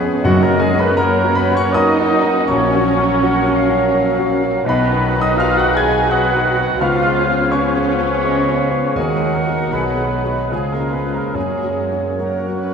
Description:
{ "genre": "classical, romantic movement for piano and orchestra", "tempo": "70-85 BPM", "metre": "3/4", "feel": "rubato", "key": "F# major", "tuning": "A4 = 444 Hz", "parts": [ { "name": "muted symphonic violin section", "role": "melody", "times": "0.0-12.7 s", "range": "E#4 to B4", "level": "-31 LUFS", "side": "left 3 dB", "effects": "none" }, { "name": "warm concert grand piano", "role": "melody", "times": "0.0-12.7 s", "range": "A#1 to G#6", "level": "-19 LUFS", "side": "left 2 dB", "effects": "none" }, { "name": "bright clarinet", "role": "second line", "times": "0.0-12.7 s", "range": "G#4 to B4", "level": "-27 LUFS", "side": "left 2 dB", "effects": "none" }, { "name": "concert flute", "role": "second line", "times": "0.0-12.7 s", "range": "A#4 to F#5", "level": "-26 LUFS", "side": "equal", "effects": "none" }, { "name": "muted symphonic violin section", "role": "second line", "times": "0.0-12.7 s", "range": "G#3 to D#4", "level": "-28 LUFS", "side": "equal", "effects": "none" }, { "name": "warm bassoon", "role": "accompaniment", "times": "0.0-12.7 s", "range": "D#3 to G#3", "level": "-24 LUFS", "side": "right 2 dB", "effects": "none" }, { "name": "muted symphonic double bass section", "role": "bass", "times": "0.0-12.7 s", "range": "A#1 to F#2", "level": "-26 LUFS", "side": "right 2 dB", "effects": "none" }, { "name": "muted symphonic viola section", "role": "accompaniment", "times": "0.2-12.7 s", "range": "F#3 to G#4", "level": "-26 LUFS", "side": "right 2 dB", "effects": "none" }, { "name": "dark French horn section", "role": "sustained chords", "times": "0.2-11.7 s", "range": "G#3 to F#4", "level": "-29 LUFS", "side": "left 3 dB", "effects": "none" }, { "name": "mellow trumpet", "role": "stabs", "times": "0.2-12.7 s", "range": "F#4 to G#5", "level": "-24 LUFS", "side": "right 1 dB", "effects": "none" }, { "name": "timpani", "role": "percussion", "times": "0.2-1.3, 11.3-12.6 s", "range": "F#2", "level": "-24 LUFS", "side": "equal", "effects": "none" }, { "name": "warm cor anglais", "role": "second line", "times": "0.3-12.7 s", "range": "F#4 to G#5", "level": "-25 LUFS", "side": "right 1 dB", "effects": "none" }, { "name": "muted symphonic cello section", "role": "bass", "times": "0.3-12.7 s", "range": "F#3 to G#4", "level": "-24 LUFS", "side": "right 3 dB", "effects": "none" } ], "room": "wet concert hall reverb, RT60 2.2 s", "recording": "minimal, uncompressed stereo recording", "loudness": "-14 LUFS", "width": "side -6 dB against mid", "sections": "0.0-12.7 A section", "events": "none", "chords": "0.2 F#; 2.5 F#/A#; 4.7 B; 6.8 C#7; 9.0 D#m; 9.7 G#m7/B; 10.5 C#; 11.4 F#" }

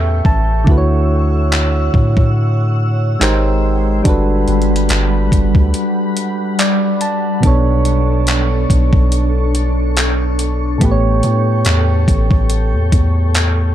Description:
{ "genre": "contemporary R&B", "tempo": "71 BPM", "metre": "4/4", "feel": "swing 54% on 16ths", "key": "B minor", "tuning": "A4 = 440 Hz", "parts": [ { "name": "soft electric-piano-like synth keys", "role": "accompaniment", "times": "0.0-13.7 s", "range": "A2 to A5", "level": "-18 LUFS", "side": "right 2 dB", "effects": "chorus" }, { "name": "glassy FM pad", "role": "sustained chords", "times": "0.0-13.7 s", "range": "G3 to E6", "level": "-21 LUFS", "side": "left 1 dB", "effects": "ensemble chorus, built-in reverb, sidechain pumping" }, { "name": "long sustained 808-style bass", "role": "bass", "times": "0.0-13.7 s", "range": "G1 to A2", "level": "-15 LUFS", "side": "equal", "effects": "none" }, { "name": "downlifter", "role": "sound effects", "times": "0.0-0.7 s", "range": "none", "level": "barely audible", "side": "none", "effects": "none" }, { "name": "crisp 8-bit digital drum machine", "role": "drums", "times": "0.2-13.6 s", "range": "handclaps, hi-hat, kick drum", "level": "-15 LUFS", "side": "equal", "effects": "overdrive" } ], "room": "digital ambience", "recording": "dark, warm production", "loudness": "-12 LUFS", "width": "side -11 dB against mid", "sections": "0.0-13.7 A section", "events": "synth keys fill 0.0-0.7, 6.2-7.4; break 5.7-7.4", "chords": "0.0 A7; 0.7 Dmaj9; 3.2 G#maj7; 4.1 Gmaj7; 7.4 Bm9; 10.8 A7" }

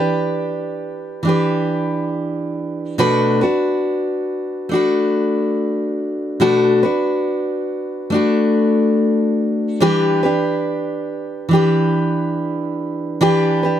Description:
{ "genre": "pop", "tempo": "70 BPM", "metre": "4/4", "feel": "straight", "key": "B minor", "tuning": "A4 = 442 Hz", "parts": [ { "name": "picked steel-string acoustic guitar", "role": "solo", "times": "0.0-13.8 s", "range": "B2 to B4", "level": "-16 LUFS", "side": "equal", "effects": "none" } ], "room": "little or no reverb", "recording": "none", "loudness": "-16 LUFS", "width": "side -10 dB against mid", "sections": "0.0-13.8 A section", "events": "none", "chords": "0.0 Em7; 3.0 Bm7; 9.8 Em7" }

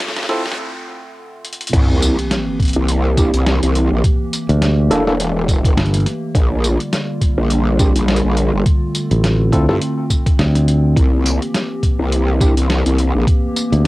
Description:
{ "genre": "glitch hop", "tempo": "104 BPM", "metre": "4/4", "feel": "swing 56% on 16ths", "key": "unclear", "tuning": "A4 = 440 Hz", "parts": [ { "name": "warbly tape-like pad", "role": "sustained chords", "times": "0.0-13.9 s", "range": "D3 to G4", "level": "-23 LUFS", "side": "equal", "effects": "chorus, built-in reverb, sidechain pumping, cassette tape" }, { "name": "growl bass", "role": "bass", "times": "0.0-13.3 s", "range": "E1 to G2", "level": "-16 LUFS", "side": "equal", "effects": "chorus, high-pass filter" }, { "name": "boom bap sampler-style drum kit", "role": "drums", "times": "0.0-13.8 s", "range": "crash cymbal, hi-hat, snare drum, tambourine", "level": "-22 LUFS", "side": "equal", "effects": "cassette tape" }, { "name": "riser and sub drop", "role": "sound effects", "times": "0.0-4.0 s", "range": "none", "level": "-26 LUFS", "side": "equal", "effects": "none" }, { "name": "bright tine electric piano", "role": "stabs", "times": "0.3-12.5 s", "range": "Bb3 to A4", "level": "-21 LUFS", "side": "equal", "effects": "medium stereo tremolo, sidechain pumping, cassette tape, tape echo" }, { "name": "electronic kick drum", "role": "drums", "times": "1.7-13.4 s", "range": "none", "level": "-15 LUFS", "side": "equal", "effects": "cassette tape" }, { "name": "fingered electric bass", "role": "bass", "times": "4.5-13.9 s", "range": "G1 to D2", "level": "-13 LUFS", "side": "equal", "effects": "none" } ], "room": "light reverb", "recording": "home recording on cassette, high-pass filter", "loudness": "-13 LUFS", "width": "side -19 dB against mid", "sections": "0.0-1.7 A section; 1.7-13.9 B section", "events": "build-up 0.0-1.7; drum fill 0.0-0.6, 1.4; riser 0.0-0.6; filter sweep on ambient pad 0.0-1.7; filter sweep 0.0-1.7; break 0.6-1.7; drop 1.7-13.9; impact 1.7-4.0", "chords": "0.0 Dm7; 1.7 C7; 4.0 Gm69; 6.4 Bb6; 8.7 Dm7; 11.0 C7; 13.3 Gm69" }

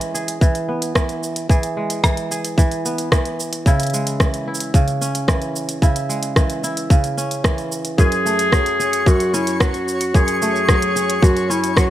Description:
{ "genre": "folktronica", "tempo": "111 BPM", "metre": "4/4", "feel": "straight", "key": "unclear", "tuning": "A4 = 439 Hz", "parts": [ { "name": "kora", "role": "arpeggios", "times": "0.0-11.9 s", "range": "F#2 to G#4", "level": "-22 LUFS", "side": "right 1 dB", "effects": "low-pass filter, tape echo" }, { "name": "organic electronic drum kit", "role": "drums", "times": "0.0-11.9 s", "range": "hi-hat, rim click, shaker", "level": "-23 LUFS", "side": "equal", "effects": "small room ambience" }, { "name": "electronic kick drum", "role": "drums", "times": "0.4-11.9 s", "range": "none", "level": "-15 LUFS", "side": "equal", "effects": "small room ambience" }, { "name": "warm clarinet", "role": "melody", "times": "8.0-11.9 s", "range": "E4 to G#4", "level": "-18 LUFS", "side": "left 1 dB", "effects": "tape echo" }, { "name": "twinkling granular texture", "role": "texture", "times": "8.6-11.9 s", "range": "C#5 to C#6", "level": "-29 LUFS", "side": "left 1 dB", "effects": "built-in reverb" } ], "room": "light reverb, digital ambience", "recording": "none", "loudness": "-16 LUFS", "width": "side -13 dB against mid", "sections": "0.0-11.9 A section", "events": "none", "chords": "0.0 E; 3.7 C#m; 8.0 F#madd9" }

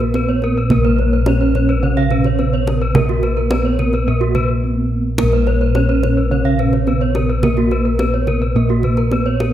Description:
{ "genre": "Balinese gamelan", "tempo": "107 BPM", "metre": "4/4", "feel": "straight", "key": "unclear", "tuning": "A4 = 441 Hz", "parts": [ { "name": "gamelan-type bronze metallophone", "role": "melody", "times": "0.0-9.5 s", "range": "Bb3 to Db4-30c", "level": "-21 LUFS", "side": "right 2 dB", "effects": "none" }, { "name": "gamelan-type bronze metallophone", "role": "accompaniment", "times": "0.0-9.5 s", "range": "Db3-30c to Bb3", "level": "-24 LUFS", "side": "right 3 dB", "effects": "none" }, { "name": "gamelan-type bronze metallophone", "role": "arpeggios", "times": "0.0-9.4 s", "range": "Gb4-20c to F5-30c", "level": "-25 LUFS", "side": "right 6 dB", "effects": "none" }, { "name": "gamelan-type bossed gongs", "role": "bass", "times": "0.0-9.5 s", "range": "Bb1 to Bb4", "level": "-17 LUFS", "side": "left 1 dB", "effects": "none" }, { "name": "kendang", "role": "percussion", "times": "0.0-9.5 s", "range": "none", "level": "-22 LUFS", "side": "right 2 dB", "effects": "none" }, { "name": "gamelan-type bronze metallophone", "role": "arpeggios", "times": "0.2-9.5 s", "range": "Bb4 to Db5-30c", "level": "-24 LUFS", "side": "left 2 dB", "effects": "none" } ], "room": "light reverb", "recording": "dark, warm production", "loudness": "-14 LUFS", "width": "side -11 dB against mid", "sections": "0.0-9.5 A section", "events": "none", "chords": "none" }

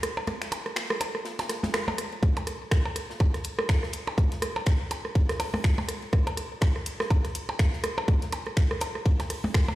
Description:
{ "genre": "techno", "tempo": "123 BPM", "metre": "4/4", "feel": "swing 58% on 16ths", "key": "none", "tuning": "none", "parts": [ { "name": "natural country drum kit", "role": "drums", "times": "0.0-9.7 s", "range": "hi-hat, ride cymbal, snare drum", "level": "-41 LUFS", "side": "equal", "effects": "sidechain pumping on cymbals, high-pass filter on cymbals, studio reverb, sidechain pumping on hats, high-pass filter on hats, high-pass filter on snare, high-pass filter on room" }, { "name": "punchy analog drum machine", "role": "drums", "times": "0.0-9.7 s", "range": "finger snaps, hi-hat", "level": "-36 LUFS", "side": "left 1 dB", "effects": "studio reverb" }, { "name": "electronic rim click and percussion blips", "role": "percussion", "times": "0.0-9.8 s", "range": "none", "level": "-31 LUFS", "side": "right 1 dB", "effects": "overdrive, studio reverb, ping-pong delay" }, { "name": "electronic kick drum", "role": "drums", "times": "2.2-9.7 s", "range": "none", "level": "-23 LUFS", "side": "equal", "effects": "studio reverb" } ], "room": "light reverb, small room ambience", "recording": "played on a big sound system in a bare room, stone room reverb", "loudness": "-25 LUFS", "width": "side -16 dB against mid", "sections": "0.0-9.8 A section", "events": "kick drops out 0.3-2.2", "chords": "none" }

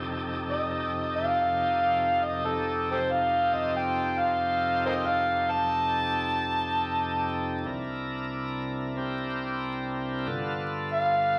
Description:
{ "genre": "blues", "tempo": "92 BPM", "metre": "4/4", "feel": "swing 68% on 8ths", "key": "unclear", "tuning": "A4 = 440 Hz", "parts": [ { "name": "bright tonewheel organ", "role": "accompaniment", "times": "0.0-11.4 s", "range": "C2 to Bb4", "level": "-33 LUFS", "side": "equal", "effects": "slow rotary speaker, overdrive" }, { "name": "overdriven harmonica", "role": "melody", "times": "0.5-11.4 s", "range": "G4 to A5", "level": "-28 LUFS", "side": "equal", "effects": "none" } ], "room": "wet large studio reverb, RT60 1.2 s", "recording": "vinyl crackle", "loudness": "-28 LUFS", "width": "mono", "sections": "0.0-11.4 A section", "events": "none", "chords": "0.0 F7; 7.7 C7; 10.3 G7" }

